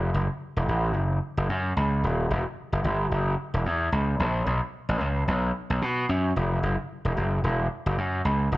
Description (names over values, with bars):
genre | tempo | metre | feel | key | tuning
funk | 111 BPM | 4/4 | swing 56% on 16ths | F# phrygian | A4 = 440 Hz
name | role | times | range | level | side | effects
gritty slap bass | solo | 0.0-8.6 s | D#1 to B2 | -24 LUFS | equal | overdrive
room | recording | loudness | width
moderate large studio reverb, RT60 1.1 s | none | -24 LUFS | side -18 dB against mid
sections
0.0-8.6 A section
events
none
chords
none